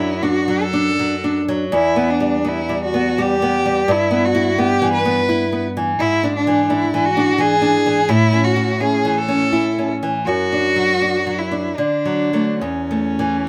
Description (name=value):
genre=romantic duo for cello and classical guitar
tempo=69-89 BPM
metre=3/4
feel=rubato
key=A major from 6.0 s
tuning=A4 = 441 Hz
part: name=rich cello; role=melody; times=0.0-13.5 s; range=C#4 to B4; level=-21 LUFS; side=equal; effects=none
part: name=nylon-string guitar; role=accompaniment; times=0.0-13.5 s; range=E2 to E4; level=-20 LUFS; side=equal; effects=none
room=light reverb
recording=none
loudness=-18 LUFS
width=mono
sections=0.0-13.5 A section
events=none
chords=0.0 D/F#; 1.7 Em; 3.9 Em/G; 6.0 E7/G#; 8.1 A; 10.3 D/F#; 11.8 D; 12.6 A/E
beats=0.24 1.01 | 1.74 2.47 3.20 | 3.90 4.58 5.29 | 6.00 6.70 7.40 | 8.10 8.81 9.54 | 10.27 11.01 11.78 | 12.62 13.48